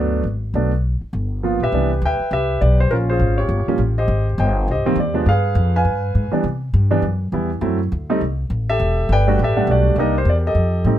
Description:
jazz piano trio; 204 BPM; 4/4; swing 60% on 8ths; A4 = 443 Hz
warm concert grand piano; melody; 0.0-11.0 s; Eb3 to Ab5; -19 LUFS; right 1 dB
upright bass; bass; 0.0-11.0 s; E1 to C3; -18 LUFS; equal
little or no reverb; close, detailed microphones; -16 LUFS; side -12 dB against mid
0.0-1.7 A section; 1.7-11.0 B section
0.0 Gmaj7 (rootless); 1.1 G7#9; 1.7 Cmaj9; 2.9 Bbm9; 3.5 G7(b5, no3); 4.1 Abmaj7; 5.3 G7b9; 6.4 Cmaj7; 7.6 F#m7b5; 8.2 Am; 8.8 Em11; 10.0 Cm7
0.24 | 0.54 0.84 1.13 1.43 | 1.72 2.02 2.31 2.61 | 2.90 3.20 3.50 3.79 | 4.09 4.38 4.67 4.97 | 5.26 5.56 5.85 6.15 | 6.44 6.74 7.03 7.33 | 7.62 7.91 8.21 8.50 | 8.79 9.09 9.38 9.68 | 9.97 10.26 10.56 10.85

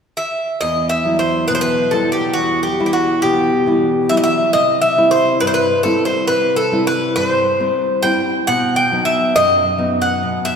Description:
greek folk, Greek bouzouki band; 137 BPM (eighths); 9/8; straight; E harmonic minor; A4 = 438 Hz
Greek bouzouki; melody; 0.2-10.6 s; F#4 to G5; -15 LUFS; equal
nylon-string guitar; accompaniment; 0.6-10.6 s; E2 to E4; -19 LUFS; equal
wet church reverb, RT60 2.9 s; recorded in a church or concert hall; -14 LUFS; side -6 dB against mid
0.6-10.6 A section
0.0 N.C.; 0.6 Emadd9; 4.5 C; 8.5 B
0.18 | 0.62 1.05 1.49 1.93 2.36 2.80 3.24 3.67 4.11 | 4.55 4.98 5.42 5.86 6.30 6.73 7.17 7.61 8.04 | 8.48 8.92 9.36 9.79 10.23

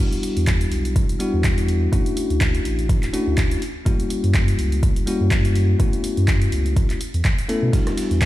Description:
deep house; 124 BPM; 4/4; swing 56% on 16ths; E dorian; A4 = 445 Hz
bell-like tine electric piano; stabs; 0.0-8.3 s; G3 to A4; -24 LUFS; left 2 dB; sidechain pumping, low-pass filter, digital delay
punchy analog drum machine; drums; 0.1-8.3 s; handclaps, hi-hat, rim click; -29 LUFS; equal; overdrive
warm sub bass; bass; 0.4-8.3 s; D1 to B2; -20 LUFS; equal; sidechain pumping
electronic kick drum; drums; 0.5-8.3 s; -20 LUFS; equal; overdrive
dusty soul sampler-style drum kit; drums; 7.7-8.3 s; ride cymbal, snare drum; -35 LUFS; right 1 dB; sidechain pumping on cymbals, high-pass filter on cymbals, high-pass filter on snare
little or no reverb; played on a big sound system in a bare room, stone room reverb; -18 LUFS; side -15 dB against mid
0.0-8.3 A section
0.0 Em9; 1.9 Dmaj9; 3.6 F#7b9; 5.8 B9sus4; 7.7 Em9
0.47 0.96 1.44 | 1.93 2.41 2.89 3.38 | 3.86 4.34 4.83 5.31 | 5.80 6.28 6.76 7.25 | 7.73 8.22

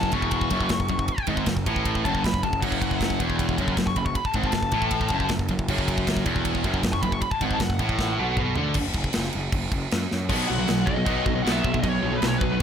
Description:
heavy metal; 156 BPM; 4/4; straight; F# minor; A4 = 440 Hz
high-gain lead guitar; melody; 0.0-12.6 s; B4 to C#6; -30 LUFS; left 2 dB; distortion, ping-pong delay
high-gain distorted guitar; riff; 0.0-12.6 s; E2 to B3; -26 LUFS; equal; distortion
fuzz picked electric bass; bass; 0.0-12.6 s; E1 to F#2; -29 LUFS; equal; overdrive
tight metal drum kit; drums; 0.0-12.6 s; china cymbal, crash cymbal, kick drum, ride cymbal, snare drum, toms; -27 LUFS; equal
small room ambience; -22 LUFS; side -8 dB against mid
0.0-8.8 A section; 8.8-10.3 B section; 10.3-12.6 C section
lead electric guitar solo 0.0-8.8; drum fill 8.0-8.8, 10.1
0.0 F#m; 8.8 N.C.; 10.3 B
0.33 0.71 | 1.09 1.48 1.86 2.24 | 2.63 3.01 3.39 3.77 | 4.16 4.54 4.92 5.31 | 5.69 6.07 6.46 6.84 | 7.23 7.61 8.00 8.38 | 8.76 9.15 9.53 9.92 | 10.30 10.69 11.07 11.45 | 11.84 12.22 12.61

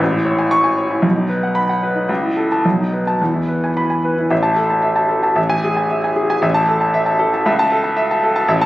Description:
classical, virtuoso piano study; 106-121 BPM; 2/4; rubato; E major, A major from 4.3 s; A4 = 440 Hz
clear grand piano; solo; 0.0-8.7 s; A1 to C#6; -14 LUFS; equal
light reverb; recorded on a phone in the room, studio reverb, compression; -14 LUFS; side -16 dB against mid
0.0-4.3 A section; 4.3-8.7 B section
0.0 Amaj7; 1.0 B; 2.1 A/C#; 2.6 B7; 3.2 E; 4.3 A5; 5.4 E/A; 6.4 A5; 7.5 A/C#
| 0.00 0.52 | 1.04 1.56 | 2.09 2.64 | 3.20 3.76 | 4.31 4.84 | 5.37 5.91 | 6.44 6.96 | 7.47 7.98 | 8.48

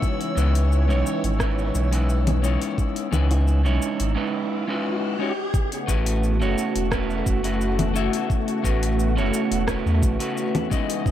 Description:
sunset chillout; 87 BPM; 4/4; straight; A4 = 440 Hz
electric guitar at the edge of break-up; accompaniment; 0.0-11.1 s; G#3 to E5; -26 LUFS; moving between left 7 dB and right 7 dB; auto-pan, analog delay
lush unison pad; sustained chords; 0.0-11.1 s; C#3 to D#5; -29 LUFS; left 1 dB; chorus
electronic kick drum; drums; 0.0-11.1 s; -24 LUFS; equal
smooth R&B drum kit; drums; 0.0-11.1 s; congas, hi-hat, rim click, shaker; -30 LUFS; left 1 dB; dub echo
riser; sound effects; 2.3-5.5 s; -33 LUFS; equal
drifting glass-harmonics texture; texture; 0.0-4.2 s; E6; -40 LUFS; right 1 dB; chorus, built-in reverb
warm sub bass; bass; 0.4-10.2 s; E1 to E2; -22 LUFS; equal
bongos; percussion; 1.8-3.4 s; -37 LUFS; equal
light reverb; echo-heavy mix; -20 LUFS; side -11 dB against mid
0.0-5.5 A section; 5.5-11.1 B section
riser 2.3-5.5; break 4.2-5.5
0.0 C#m9; 5.5 A69
| 0.02 0.71 1.40 2.09 | 2.78 3.47 4.16 4.85 | 5.54 6.23 6.92 7.61 | 8.30 8.99 9.68 10.37 | 11.06

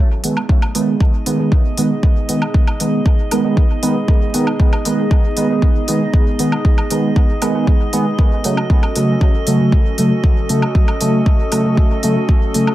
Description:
dub techno; 117 BPM; 4/4; straight; G# phrygian; A4 = 442 Hz
dark analog pad; sustained chords; 0.4-12.7 s; B3 to A4; -25 LUFS; equal; chorus, sidechain pumping
drifting glass-harmonics texture; texture; 0.8-12.7 s; D#5; -28 LUFS; right 2 dB; chorus, built-in reverb, sidechain pumping
resonant sweep polysynth; stabs; 0.2-12.7 s; C#3 to B3; -17 LUFS; right 1 dB; chorus, phaser, cassette tape, sidechain pumping, dub echo
electronic hi-hat; drums; 0.2-12.6 s; -23 LUFS; equal
woodblock; percussion; 0.4-12.7 s; -27 LUFS; right 1 dB; overdrive, sidechain pumping on perc, sidechain pumping on toms, dub echo
electronic kick drum; drums; 0.5-12.4 s; -13 LUFS; equal
light reverb, digital ambience; vinyl crackle; -13 LUFS; side -15 dB against mid
0.0-12.7 A section
filter sweep on analog polysynth 0.0-12.7
0.0 G#m; 8.2 F#m
0.49 1.01 1.52 | 2.03 2.54 3.06 3.57 | 4.08 4.60 5.11 5.62 | 6.13 6.65 7.16 7.67 | 8.19 8.70 9.21 9.72 | 10.24 10.75 11.26 11.78 | 12.29

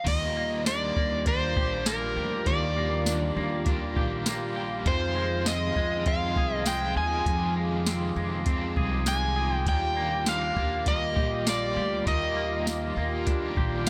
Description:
dream pop; 100 BPM; 4/4; straight; Eb major; A4 = 440 Hz
overdriven slide guitar; melody; 0.0-13.9 s; Bb4 to Ab5; -32 LUFS; equal; delay
biting overdriven guitar; accompaniment; 0.0-13.9 s; F2 to F4; -37 LUFS; equal; tremolo, subtle chorus
hollow soft pad; sustained chords; 0.0-13.9 s; F4 to D6; -38 LUFS; equal; chorus
clean electric guitar; arpeggios; 0.1-13.9 s; F2 to Ab4; -36 LUFS; equal; subtle chorus, delay
upright bass; bass; 0.1-13.9 s; Bb1 to F2; -35 LUFS; equal
soft vintage rhythm box; drums; 0.1-13.9 s; crash cymbal, hi-hat, kick drum, snare drum, tambourine; -31 LUFS; equal
light reverb, digital ambience; -27 LUFS; mono
0.1-13.9 A section
0.1 Ebmaj9; 4.9 Fm7; 9.7 Ebmaj9
| 0.07 0.67 1.26 1.86 | 2.46 3.06 3.67 4.26 | 4.87 5.46 6.07 6.67 | 7.26 7.87 8.46 9.06 | 9.66 10.27 10.87 11.46 | 12.06 12.66 13.27 13.87

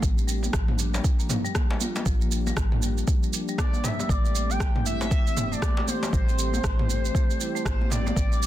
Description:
afro house; 118 BPM; 4/4; swing 60% on 16ths; A phrygian; A4 = 440 Hz
warm analog pad; sustained chords; 0.0-8.5 s; E3 to G4; -36 LUFS; equal; chorus, sidechain pumping
marimba with medium mallets; arpeggios; 0.0-8.5 s; F3 to G4; -33 LUFS; left 1 dB; sidechain pumping, ping-pong delay
woody FM bass; bass; 0.0-8.5 s; E1 to A1; -28 LUFS; equal; sidechain pumping
deep house drum kit; drums; 0.0-8.5 s; rim click, shaker, toms; -31 LUFS; right 2 dB; soft clipping on snare
electronic kick drum; drums; 0.0-8.3 s; -24 LUFS; equal; overdrive
djembe; percussion; 0.4-8.1 s; -34 LUFS; left 3 dB
expressive synth lead; melody; 3.6-8.5 s; C5 to G5; -32 LUFS; equal; wide subtle chorus, cassette tape, ping-pong delay
little or no reverb; dense, heavily limited modern master; -22 LUFS; side -13 dB against mid
0.0-8.5 A section
0.0 Gm7/A; 4.1 Am7
| 0.03 0.54 1.04 1.55 | 2.06 2.57 3.08 3.59 | 4.09 4.60 5.11 5.62 | 6.13 6.64 7.14 7.65 | 8.16

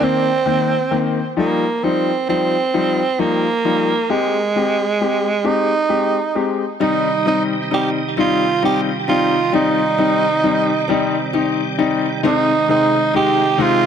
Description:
pop; 44 BPM (dotted quarters); 6/8; straight; A4 = 439 Hz
growling tenor saxophone; melody; 0.0-13.9 s; Ab3 to G4; -18 LUFS; right 4 dB; digital delay
clear grand piano; accompaniment; 0.0-13.8 s; C3 to G4; -19 LUFS; left 5 dB
tonewheel organ; sustained chords; 6.8-13.9 s; C3 to D5; -25 LUFS; equal; overdrive, chorus vibrato, slow rotary speaker
fingerpicked steel-string acoustic guitar; arpeggios; 6.8-13.9 s; G3 to G4; -27 LUFS; right 6 dB
light reverb; -15 LUFS; side -8 dB against mid
0.0-6.8 A section; 6.8-13.9 B section
0.0 Cm7/Eb; 1.4 Ebadd9; 4.1 Abmaj7; 6.8 Cm; 12.2 Ab/C
0.01 | 1.37 2.73 | 4.09 5.45 | 6.81 8.16 | 9.52 10.88 | 12.24 13.59

